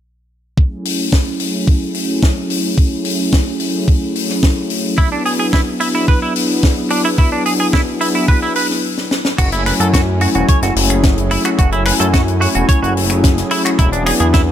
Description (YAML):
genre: nu-disco, nu disco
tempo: 109 BPM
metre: 4/4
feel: straight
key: F# minor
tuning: A4 = 439 Hz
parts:
  - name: warm analog pad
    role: accompaniment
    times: 0.6-14.5 s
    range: F#3 to G#5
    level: -18 LUFS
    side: left 1 dB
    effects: chorus, sidechain pumping, dub echo
  - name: electronic kick drum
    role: drums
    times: 0.6-14.5 s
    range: none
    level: -13 LUFS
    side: equal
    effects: none
  - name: tight funk drum kit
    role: drums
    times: 0.9-14.5 s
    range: crash cymbal, finger snaps, hi-hat, snare drum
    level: -20 LUFS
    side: left 3 dB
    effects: none
  - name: direct-recorded clean electric guitar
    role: riff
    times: 5.0-14.4 s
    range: D4 to C#5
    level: -19 LUFS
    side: right 3 dB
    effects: analog chorus, dub echo
  - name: chorused synth bass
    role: bass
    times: 9.4-14.5 s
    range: E1 to F#2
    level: -17 LUFS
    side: equal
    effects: none
room: light reverb, small room ambience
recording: faint mains hum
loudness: -13 LUFS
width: side -10 dB against mid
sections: 0.6-9.4 A section; 9.4-14.5 B section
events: filter sweep on analog synth pad 0.6-9.4; stop 8.8-9.4; drum fill 9.0-9.4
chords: 0.6 F#m7; 5.0 E7; 9.1 N.C.; 9.4 F#m7; 13.8 E7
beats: | 0.58 1.13 1.68 2.23 | 2.78 3.33 3.88 4.43 | 4.98 5.53 6.08 6.63 | 7.18 7.73 8.28 8.83 | 9.38 9.94 10.48 11.04 | 11.59 12.14 12.69 13.24 | 13.79 14.34